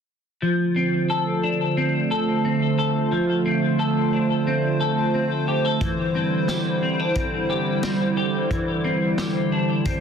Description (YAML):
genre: dream pop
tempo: 89 BPM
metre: 4/4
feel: straight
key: D minor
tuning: A4 = 439 Hz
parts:
  - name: hollow soft pad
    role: sustained chords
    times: 0.4-10.0 s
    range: D3 to C5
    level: -22 LUFS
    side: right 2 dB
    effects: chorus, plate reverb
  - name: semi-hollow electric guitar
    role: arpeggios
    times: 0.4-10.0 s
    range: E3 to A4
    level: -23 LUFS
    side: left 2 dB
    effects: ensemble chorus, ping-pong delay, plate reverb
  - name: vintage drum kit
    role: drums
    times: 5.8-10.0 s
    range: hi-hat, kick drum, snare drum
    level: -29 LUFS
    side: equal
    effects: none
room: wet studio reverb, RT60 0.6 s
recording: dense, heavily limited modern master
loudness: -20 LUFS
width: side -7 dB against mid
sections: 0.4-10.0 A section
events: none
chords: 0.4 Dm7; 5.8 Cadd9